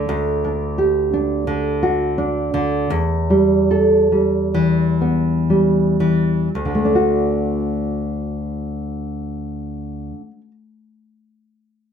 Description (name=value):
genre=folk, solo fingerstyle acoustic guitar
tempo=54-87 BPM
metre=4/4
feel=rubato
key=D major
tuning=A4 = 436 Hz
part: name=nylon-string guitar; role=solo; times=0.0-10.5 s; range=D2 to A4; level=-16 LUFS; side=equal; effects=none
room=moderate studio reverb, RT60 0.5 s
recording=none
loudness=-16 LUFS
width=side -7 dB against mid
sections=0.1-6.5 A section; 6.5-10.9 B section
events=slowing down 0.1-6.5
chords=0.1 D; 2.9 Em; 6.5 D